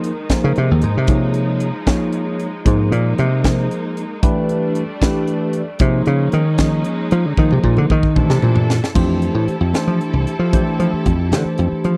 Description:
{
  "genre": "electric jazz fusion",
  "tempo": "76 BPM (dotted quarters)",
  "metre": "6/8",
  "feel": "straight",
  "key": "Bb mixolydian, F major from 9.0 s",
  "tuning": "A4 = 440 Hz",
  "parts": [
    { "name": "tine electric piano", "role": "accompaniment", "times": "0.0-11.9 s", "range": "E3 to Eb5", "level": "-23 LUFS", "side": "equal", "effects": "phaser" },
    { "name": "rich studio string section", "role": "sustained chords", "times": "0.0-12.0 s", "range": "C3 to A4", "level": "-30 LUFS", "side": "equal", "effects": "none" },
    { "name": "crisp fusion drum kit", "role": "drums", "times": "0.0-12.0 s", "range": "crash cymbal, hi-hat, kick drum, snare drum, toms", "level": "-20 LUFS", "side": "equal", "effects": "none" },
    { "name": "dry thumbed slap bass", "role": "bass", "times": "0.4-12.0 s", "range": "C2 to F3", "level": "-18 LUFS", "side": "equal", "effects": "none" }
  ],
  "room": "small room ambience",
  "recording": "dry, close 1970s-style studio recording",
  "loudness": "-17 LUFS",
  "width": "mono",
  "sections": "0.0-9.0 A section; 9.0-12.0 B section",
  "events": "slap bass solo 0.0-9.0; drum fill 7.4-9.0",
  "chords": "0.0 Ebsus4; 1.1 Absus24; 2.7 Bb9sus4; 4.2 A9sus4; 5.8 Eb13sus4; 7.4 Bb9sus4; 8.2 C13; 9.0 Fmaj9"
}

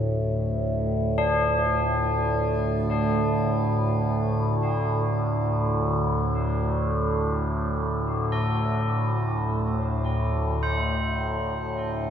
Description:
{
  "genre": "dark ambient drone",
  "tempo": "free time",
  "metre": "none",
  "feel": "none",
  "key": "unclear",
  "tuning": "A4 = 440 Hz",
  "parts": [
    { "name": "overtone-sweeping drone", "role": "drone", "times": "0.0-12.1 s", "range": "D2 to A2", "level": "-24 LUFS", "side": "equal", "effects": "chorus, built-in reverb, phaser" },
    { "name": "tubular bells", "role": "arpeggios", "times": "1.2-12.1 s", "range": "D4 to C5", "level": "-29 LUFS", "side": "left 3 dB", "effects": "diffuse ambient delay, shimmer reverb" }
  ],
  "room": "wet lush hall reverb, RT60 2.8 s",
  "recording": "dreamy mix soaked in reverb",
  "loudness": "-23 LUFS",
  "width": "side -8 dB against mid",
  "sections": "0.0-12.1 A section",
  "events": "none",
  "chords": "0.0 D5"
}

